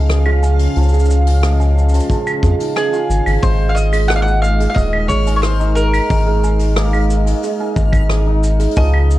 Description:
folktronica; 90 BPM; 4/4; straight; Ab major; A4 = 445 Hz
warm analog pad; sustained chords; 0.0-9.2 s; Db3 to Ab5; -25 LUFS; equal; wide subtle chorus
hammered dulcimer; arpeggios; 0.0-9.2 s; F3 to F5; -24 LUFS; equal
round analog bass; bass; 0.0-9.2 s; Eb1 to F2; -14 LUFS; equal; tube saturation
backwards swelling texture; texture; 0.0-9.2 s; F5 to F6; -36 LUFS; left 1 dB; built-in reverb
jazz brush drum kit; drums; 0.1-9.2 s; claves, hi-hat, rim click, shaker; -25 LUFS; equal
kalimba; second line; 0.3-8.9 s; Eb4 to Ab5; -24 LUFS; right 9 dB; tape echo
kick drum; drums; 2.1-8.9 s; -18 LUFS; equal
mandolin; melody; 2.8-9.2 s; Ab4 to Gb5; -21 LUFS; left 1 dB
studio ambience; dark, warm production; -12 LUFS; side -15 dB against mid
0.0-3.4 A section; 3.4-9.2 B section
kick drops out 2.8-3.4
0.0 Db; 3.4 Abadd9
0.10 | 0.77 1.43 2.10 2.77 | 3.43 4.10 4.76 5.43 | 6.10 6.76 7.43 8.10 | 8.77

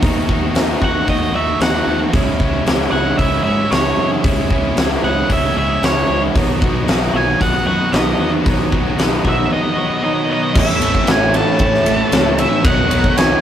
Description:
rock, shoegaze and dream pop; 114 BPM; 4/4; straight; A4 = 438 Hz
twelve-string electric guitar; arpeggios; 0.0-13.4 s; D#3 to A4; -27 LUFS; left 4 dB
overdriven electric guitar; riff; 0.0-13.4 s; A2 to F#4; -22 LUFS; equal
overdriven semi-hollow guitar; riff; 0.0-13.4 s; A2 to F#4; -23 LUFS; right 4 dB
thick fuzz guitar; riff; 0.0-13.4 s; A2 to D#4; -26 LUFS; left 4 dB
fingered electric bass; bass; 0.0-13.3 s; A1 to G#2; -23 LUFS; equal
huge arena drum kit; drums; 0.0-13.3 s; crash cymbal, hi-hat, kick drum, ride cymbal, snare drum; -17 LUFS; equal
octave-fuzz lead guitar; melody; 0.8-13.4 s; C#5 to A5; -20 LUFS; right 2 dB; distortion
warbly tape-like pad; sustained chords; 11.0-13.4 s; A4 to C#6; -22 LUFS; left 2 dB; chorus, built-in reverb
moderate small room reverb, RT60 0.5 s; rough rehearsal-room recording, warm saturation; -13 LUFS; side -10 dB against mid
0.0-10.6 A section; 10.6-13.4 B section
0.0 D#dim; 2.1 C#m; 6.4 B; 10.6 A; 12.7 Badd9
| 0.02 0.55 1.08 1.61 | 2.13 2.66 3.19 3.72 | 4.24 4.77 5.30 5.83 | 6.35 6.88 7.41 7.93 | 8.46 8.98 9.51 10.04 | 10.56 11.08 11.61 12.13 | 12.65 13.18

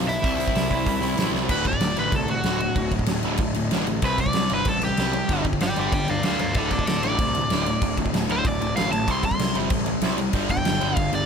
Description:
punk rock; 190 BPM; 4/4; straight; A4 = 440 Hz
distorted electric guitar; riff; 0.0-11.3 s; D2 to C4; -29 LUFS; right 14 dB; overdrive
sludgy distorted guitar; riff; 0.0-11.3 s; D2 to C4; -28 LUFS; left 13 dB; overdrive
fuzz picked electric bass; bass; 0.0-11.2 s; D1 to D2; -29 LUFS; equal; overdrive
crunchy overdriven guitar; melody; 0.1-11.3 s; E4 to C6; -26 LUFS; equal; digital delay
big rock drum kit; drums; 0.1-11.2 s; crash cymbal, hi-hat, kick drum, snare drum; -25 LUFS; equal
little or no reverb; -20 LUFS; side -6 dB against mid
0.0-1.5 A section; 1.5-11.3 B section
drum fill 1.3; overdriven electric guitar solo 1.5-11.3
0.2 C; 1.5 D; 4.0 C5; 5.3 G5; 6.6 D5; 9.1 C5; 10.3 G5
| 0.23 0.55 0.86 1.18 | 1.49 1.81 2.12 2.44 | 2.76 3.07 3.39 3.71 | 4.02 4.34 4.65 4.97 | 5.29 5.60 5.92 6.24 | 6.55 6.87 7.19 7.50 | 7.82 8.13 8.45 8.77 | 9.08 9.40 9.71 10.03 | 10.35 10.66 10.98

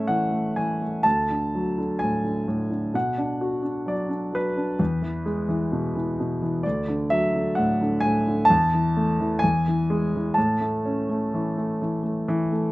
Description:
classical, lyrical solo piano; 64 BPM; 4/4; rubato; A major; A4 = 440 Hz
warm grand piano; solo; 0.0-12.7 s; D2 to A5; -22 LUFS; equal
light reverb; nothing above 10.4 kHz; -22 LUFS; side -18 dB against mid
0.0-12.7 A section
0.0 A; 1.0 D; 2.9 Bm; 4.8 E; 6.6 D; 8.5 Esus4; 9.4 E; 10.4 A
0.09 1.05 2.00 | 2.94 3.87 4.80 5.72 | 6.64 7.56 8.49 9.43 | 10.36 11.31 12.27

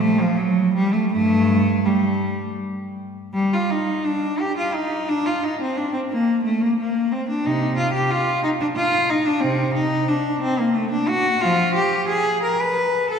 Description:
classical, baroque-style suite movement for unaccompanied cello; 78-93 BPM; 3/4; rubato; G minor; A4 = 439 Hz
rich cello; solo; 0.0-13.2 s; G2 to B4; -18 LUFS; equal
wet church reverb, RT60 2.6 s; minimal, uncompressed stereo recording; -18 LUFS; side -6 dB against mid
0.0-3.3 A section; 3.3-13.2 B section
0.37 | 1.11 1.85 2.58 | 3.34 4.05 4.74 | 5.43 6.10 6.78 | 7.43 8.09 8.75 | 9.42 10.09 10.76 | 11.42 12.10 12.78

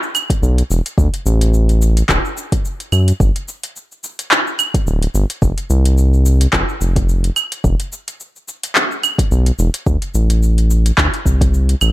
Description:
sunset chillout; 108 BPM; 4/4; swing 56% on 16ths; A4 = 445 Hz
deep house drum kit; drums; 0.0-11.9 s; claves, handclaps, hi-hat, shaker; -18 LUFS; right 1 dB; overdrive
electronic kick drum; drums; 0.3-11.5 s; -17 LUFS; equal
round analog bass; bass; 0.4-11.9 s; D1 to F#2; -13 LUFS; equal
little or no reverb; -13 LUFS; side -16 dB against mid
0.0-11.9 A section
0.42 | 0.98 1.53 2.09 2.65 | 3.20 3.76 4.31 4.87 | 5.42 5.98 6.54 7.09 | 7.65 8.20 8.76 9.31 | 9.87 10.42 10.98 11.54

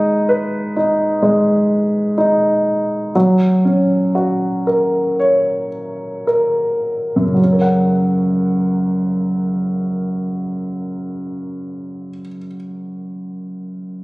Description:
pop; 53-65 BPM; 4/4; straight; F# major; A4 = 440 Hz
warm baby grand piano; accompaniment; 0.0-14.0 s; F#2 to F#5; -15 LUFS; equal
moderate lush hall reverb, RT60 2.6 s; recorded on a phone in the room, studio reverb; -14 LUFS; side -22 dB against mid
0.0-7.4 A section; 7.4-11.8 B section
slowing down 0.0-7.4
0.0 G#m; 3.2 F#
0.29 1.23 2.18 | 3.15 4.15 5.18 6.27 | 7.39 8.50 9.61 10.71

